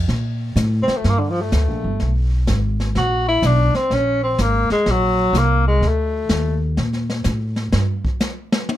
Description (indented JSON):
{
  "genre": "jazz, small-group swing and bop",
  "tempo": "126 BPM",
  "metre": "4/4",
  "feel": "swing 66% on 8ths",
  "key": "unclear",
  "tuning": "A4 = 440 Hz",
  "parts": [
    { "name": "upright bass", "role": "bass", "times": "0.0-8.0 s", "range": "G1 to Bb2", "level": "-19 LUFS", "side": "equal", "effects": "none" },
    { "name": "jazz brush drum kit", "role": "drums", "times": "0.1-8.8 s", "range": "brushed snare drum, hi-hat, kick drum, snare drum, toms", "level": "-23 LUFS", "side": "left 1 dB", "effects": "none" },
    { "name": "warm tenor saxophone", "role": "melody", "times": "0.8-6.6 s", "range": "D3 to F#4", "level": "-19 LUFS", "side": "left 1 dB", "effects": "plate reverb" }
  ],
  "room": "light reverb",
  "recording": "dark, warm production",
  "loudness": "-16 LUFS",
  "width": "side -13 dB against mid",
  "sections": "0.1-8.8 A section",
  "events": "tenor saxophone solo 0.1-8.8; drum solo 7.7-8.8",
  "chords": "0.1 Bb5; 2.0 Abm; 3.0 Bbaug; 3.9 Ab9; 5.8 D5; 7.7 N.C."
}